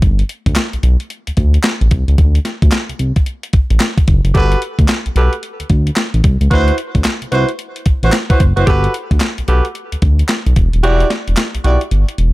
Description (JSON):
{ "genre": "R&B, new jack swing", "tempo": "111 BPM", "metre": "4/4", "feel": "swing 63% on 16ths", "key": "unclear", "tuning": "A4 = 441 Hz", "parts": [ { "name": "smooth synth bass", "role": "bass", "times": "0.0-12.3 s", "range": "D#1 to D2", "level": "-13 LUFS", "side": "equal", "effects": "none" }, { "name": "crisp 8-bit digital drum machine", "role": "drums", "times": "0.0-12.3 s", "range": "handclaps, hi-hat, kick drum, snare drum", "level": "-15 LUFS", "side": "equal", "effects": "none" }, { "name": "warm horn section", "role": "stabs", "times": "4.3-11.8 s", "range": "E4 to D5", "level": "-18 LUFS", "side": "right 2 dB", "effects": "none" } ], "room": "little or no reverb", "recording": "none", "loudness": "-12 LUFS", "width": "side -19 dB against mid", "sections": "0.0-12.3 A section", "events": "kick muted 10.8-12.3", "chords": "0.0 G; 2.2 D7; 4.3 Gmaj9; 6.5 D13; 8.7 Gmaj9; 10.8 Em9" }